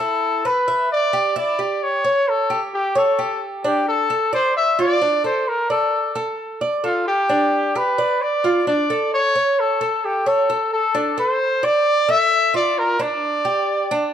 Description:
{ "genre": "latin", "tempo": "132 BPM", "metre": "4/4", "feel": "straight", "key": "D minor", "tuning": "A4 = 443 Hz", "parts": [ { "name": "warm trumpet", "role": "melody", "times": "0.0-14.1 s", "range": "F4 to E5", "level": "-18 LUFS", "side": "left 1 dB", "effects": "tape echo" }, { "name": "Cuban tres", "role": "arpeggios", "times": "0.0-14.1 s", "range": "D4 to E5", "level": "-22 LUFS", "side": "right 1 dB", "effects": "none" } ], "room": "moderate large studio reverb, RT60 0.8 s", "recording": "dark, warm production", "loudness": "-17 LUFS", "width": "side -9 dB against mid", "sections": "0.0-10.9 A section; 10.9-14.1 B section", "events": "none", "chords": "0.0 Em7; 1.8 A7; 3.6 Dm; 5.5 F6 (rootless); 7.3 G7; 9.1 A; 10.9 Dmadd9; 12.8 G5" }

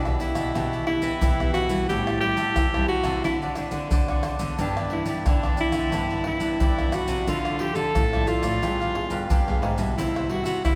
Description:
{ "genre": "samba and choro", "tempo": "89 BPM", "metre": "4/4", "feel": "straight", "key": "unclear", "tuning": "A4 = 440 Hz", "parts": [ { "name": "clear alto saxophone", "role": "melody", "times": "0.0-10.8 s", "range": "D4 to A4", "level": "-29 LUFS", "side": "equal", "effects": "none" }, { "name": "cavaquinho", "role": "accompaniment", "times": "0.0-10.8 s", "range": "D4 to A5", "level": "-36 LUFS", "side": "equal", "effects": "none" }, { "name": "nylon-string guitar", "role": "accompaniment", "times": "0.0-10.8 s", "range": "G2 to B4", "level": "-36 LUFS", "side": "equal", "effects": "none" }, { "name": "nylon-string guitar", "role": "bass", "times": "0.0-10.8 s", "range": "G2 to G3", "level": "-33 LUFS", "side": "equal", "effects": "none" }, { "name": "tube shaker, surdo, pandeiro and tamborim", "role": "percussion", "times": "0.1-10.8 s", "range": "none", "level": "-28 LUFS", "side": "equal", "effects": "none" } ], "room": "wet church reverb, RT60 3.1 s", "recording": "recorded in a church or concert hall", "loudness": "-24 LUFS", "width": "mono", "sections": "0.0-10.8 A section", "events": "none", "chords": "0.0 Em7; 1.9 Am7; 3.2 D13; 4.6 G6; 7.3 Dm9; 8.6 G7b9; 10.0 Cmaj7" }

